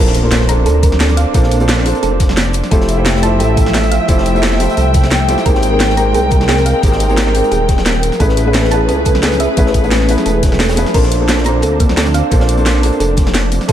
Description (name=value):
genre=liquid drum and bass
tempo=175 BPM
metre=4/4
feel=swing 54% on 16ths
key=Bb lydian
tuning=A4 = 440 Hz
part: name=felt-muted upright piano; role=accompaniment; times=0.0-13.7 s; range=A3 to C5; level=-18 LUFS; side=left 1 dB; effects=ping-pong delay
part: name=dark studio string section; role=sustained chords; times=0.0-13.7 s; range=F3 to G5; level=-18 LUFS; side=equal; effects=vintage 12-bit sampler grit
part: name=thumb-piano-like synth pluck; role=arpeggios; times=0.0-13.7 s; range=Bb3 to Bb5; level=-21 LUFS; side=right 3 dB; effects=chorus, tape echo
part: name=dark detuned saw bass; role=bass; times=0.0-13.7 s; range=Eb1 to D2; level=-15 LUFS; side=equal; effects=tube saturation
part: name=impact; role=sound effects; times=0.0-1.3 s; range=none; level=-28 LUFS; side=equal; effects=none
part: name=crunchy breakbeat drum kit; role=drums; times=0.1-13.7 s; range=hi-hat, snare drum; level=-26 LUFS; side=equal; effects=high-pass filter on hats, high-pass filter on snare, high-pass filter on room
part: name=drum and bass drum kit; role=drums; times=0.1-13.7 s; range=crash cymbal, hi-hat, snare drum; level=-19 LUFS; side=equal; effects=none
part: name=electronic kick drum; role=drums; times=0.8-13.7 s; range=none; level=-13 LUFS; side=equal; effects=none
room=moderate plate reverb, RT60 2.2 s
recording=dreamy mix soaked in reverb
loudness=-10 LUFS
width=side -10 dB against mid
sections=0.0-13.7 A section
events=impact 0.0-1.3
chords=0.0 Bbmaj9; 2.7 Fmaj9; 5.5 Abmaj9; 8.2 Amaj9; 10.9 Bbmaj9